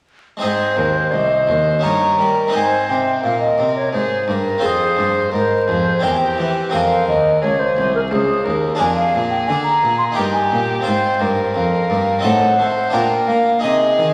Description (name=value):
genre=classical, baroque-style sonata movement with continuo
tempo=86 BPM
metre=3/4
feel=straight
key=Ab major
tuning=A4 = 439 Hz
part: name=baroque flute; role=melody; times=0.4-14.1 s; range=Ab4 to C6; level=-20 LUFS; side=equal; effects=none
part: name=warm violin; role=second line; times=0.4-14.1 s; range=G4 to Db5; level=-24 LUFS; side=equal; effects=none
part: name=harpsichord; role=accompaniment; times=0.4-14.1 s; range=C2 to Eb5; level=-24 LUFS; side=equal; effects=none
part: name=rich cello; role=bass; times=0.4-14.1 s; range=C2 to Bb3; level=-26 LUFS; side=equal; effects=none
room=wet recital hall reverb, RT60 1.6 s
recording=vinyl crackle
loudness=-17 LUFS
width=mono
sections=0.4-14.1 A section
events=none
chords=0.4 Ab; 1.8 Eb7/G; 2.5 Ab; 4.6 Fm; 6.0 C7/E; 6.7 Fm; 8.8 Bb7/F; 10.2 Eb/G; 10.9 Fm; 12.2 Adim7; 12.9 Bb; 13.6 Ab/C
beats=| 0.42 1.13 1.84 | 2.54 3.24 3.94 | 4.63 5.33 6.04 | 6.73 7.42 8.11 | 8.80 9.49 10.18 | 10.87 11.56 12.25 | 12.94 13.63